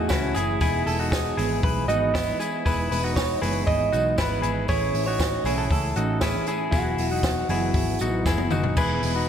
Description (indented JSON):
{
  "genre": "jangly indie pop",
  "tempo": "118 BPM",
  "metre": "4/4",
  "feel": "straight",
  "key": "E major",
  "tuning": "A4 = 440 Hz",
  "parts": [
    { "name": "electric guitar through a small old amp", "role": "melody", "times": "0.0-9.3 s", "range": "F#4 to D#5", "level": "-27 LUFS", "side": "right 1 dB", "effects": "slapback echo" },
    { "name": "mellow electric guitar", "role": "accompaniment", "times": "0.0-9.3 s", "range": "A2 to E4", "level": "-30 LUFS", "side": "right 3 dB", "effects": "ensemble chorus, slapback echo" },
    { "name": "semi-hollow electric guitar", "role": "arpeggios", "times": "0.0-9.3 s", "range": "B3 to G#4", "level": "-29 LUFS", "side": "left 3 dB", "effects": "slapback echo" },
    { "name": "vintage muted picked electric bass", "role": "bass", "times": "0.0-9.3 s", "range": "E1 to C#2", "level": "-28 LUFS", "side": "equal", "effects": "none" },
    { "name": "compact cocktail drum kit", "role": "drums", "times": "0.1-9.1 s", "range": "crash cymbal, hi-hat, kick drum, snare drum, toms", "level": "-27 LUFS", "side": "equal", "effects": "none" },
    { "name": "tambourine", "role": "percussion", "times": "0.1-8.9 s", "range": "none", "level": "-42 LUFS", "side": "right 6 dB", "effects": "none" }
  ],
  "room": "moderate lush hall reverb, RT60 2.4 s",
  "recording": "big arena sound",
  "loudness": "-21 LUFS",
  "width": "side -8 dB against mid",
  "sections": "0.0-8.8 A section",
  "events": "drum fill 8.3-8.8",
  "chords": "0.0 A; 0.6 Emaj7; 4.7 A; 6.7 Esus2; 8.8 Emaj7"
}